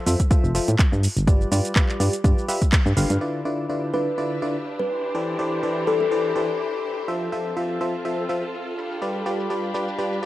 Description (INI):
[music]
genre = piano house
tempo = 124 BPM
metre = 4/4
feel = swing 55% on 16ths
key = D dorian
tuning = A4 = 440 Hz
[part]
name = barking FM electric piano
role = riff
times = 0.0-10.3 s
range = D3 to F5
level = -26 LUFS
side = equal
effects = chorus, cassette tape, sidechain pumping, analog delay
[part]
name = solid FM bass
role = bass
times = 0.1-3.2 s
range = F1 to A2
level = -21 LUFS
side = equal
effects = tube saturation, sidechain pumping
[part]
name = house drum kit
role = drums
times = 0.1-10.3 s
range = handclaps, hi-hat, shaker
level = -28 LUFS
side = right 1 dB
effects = low-pass filter on snare, low-pass filter on hats, low-pass filter on perc, low-pass filter on room
[part]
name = electronic kick drum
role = drums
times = 0.2-2.8 s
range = none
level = -18 LUFS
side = equal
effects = overdrive
[part]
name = clear studio violin section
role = sustained chords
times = 3.2-10.3 s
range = D4 to E6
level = -34 LUFS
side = equal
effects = sidechain pumping, low-pass filter
[part]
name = warm symphonic string section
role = texture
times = 3.2-10.3 s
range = E3 to C5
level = -32 LUFS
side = left 1 dB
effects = sidechain pumping
[part]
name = kalimba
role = melody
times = 3.9-6.1 s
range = A4 to B4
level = -27 LUFS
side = left 3 dB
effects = none
[sound]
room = little or no reverb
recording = dry, gritty hardware recording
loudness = -20 LUFS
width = side -15 dB against mid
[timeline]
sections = 0.0-3.2 A section; 3.2-10.3 B section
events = band accent 2.7; filter sweep on drum 3.2-10.3; filter sweep on violin section 3.2-10.3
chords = 0.0 Fmaj7; 1.0 G7; 3.2 Dm69; 4.9 Am11/E; 7.1 Fmaj7; 8.8 G7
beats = 0.31 0.79 | 1.27 1.76 2.24 2.73 | 3.21 3.69 4.18 4.66 | 5.15 5.63 6.11 6.60 | 7.08 7.57 8.05 8.53 | 9.02 9.50 9.98